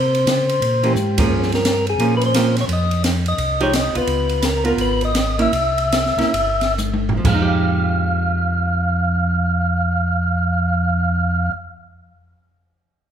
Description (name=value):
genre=soul jazz organ trio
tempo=121-174 BPM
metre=4/4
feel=swing 63% on 8ths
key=F minor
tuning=A4 = 439 Hz
part: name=percussive tonewheel organ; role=melody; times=0.0-11.5 s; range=G4 to F5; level=-20 LUFS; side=left 1 dB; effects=slow rotary speaker
part: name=mellow tonewheel organ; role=bass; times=0.0-11.5 s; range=G1 to Db3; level=-20 LUFS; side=equal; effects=slow rotary speaker
part: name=open jazz drum kit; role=drums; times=0.1-7.4 s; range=crash cymbal, hi-hat, kick drum, ride cymbal, snare drum, toms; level=-22 LUFS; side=equal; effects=none
part: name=archtop guitar, miked and amplified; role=accompaniment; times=0.8-11.7 s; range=E3 to Bb4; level=-23 LUFS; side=right 5 dB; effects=none
room=moderate large studio reverb, RT60 1.5 s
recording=band playing live in one room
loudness=-16 LUFS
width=side -9 dB against mid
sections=0.0-1.3 A section; 1.3-7.2 B section; 7.2-11.2 C section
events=drum fill 1.0-1.3, 6.8-7.2; band accent 1.1; slowing down 4.1-7.2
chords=0.0 C7(no3); 1.3 Gm7b5; 2.7 F7(no3); 4.1 Db13; 5.5 C; 7.2 Fm9